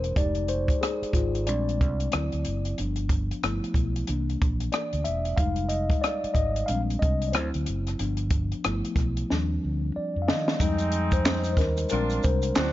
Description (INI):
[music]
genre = R&B, neo-soul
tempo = 92 BPM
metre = 4/4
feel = swing 60% on 16ths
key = F dorian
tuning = A4 = 441 Hz
[part]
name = mellow tine electric piano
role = accompaniment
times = 0.0-12.7 s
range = E3 to F5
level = -29 LUFS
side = left 2 dB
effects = slow stereo tremolo
[part]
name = fingered electric bass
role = bass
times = 0.0-12.7 s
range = E1 to Eb3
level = -28 LUFS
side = equal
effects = none
[part]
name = compact cocktail drum kit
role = drums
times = 0.0-12.7 s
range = handclaps, hi-hat, kick drum, rim click, snare drum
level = -27 LUFS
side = equal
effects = none
[part]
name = clear horn section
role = stabs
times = 10.6-12.7 s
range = Ab3 to F#4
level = -33 LUFS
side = right 3 dB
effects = none
[part]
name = maracas and finger snaps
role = percussion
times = 10.6-12.7 s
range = none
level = -38 LUFS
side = right 7 dB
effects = none
[sound]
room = small room ambience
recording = nothing above 7.5 kHz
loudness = -24 LUFS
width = side -15 dB against mid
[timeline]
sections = 0.0-10.6 A section; 10.6-12.7 B section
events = tine electric piano solo 0.0-10.6, 10.6-12.7; drum fill 9.3-10.6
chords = 0.2 Fm7; 1.5 Bb13; 2.1 D7; 2.8 G7; 3.4 G13; 4.1 C7; 5.4 Fm7; 6.7 Bb13; 7.3 D7; 8.0 G7; 8.6 G13; 9.3 Ebmaj13; 10.6 Fm7; 11.9 Bb13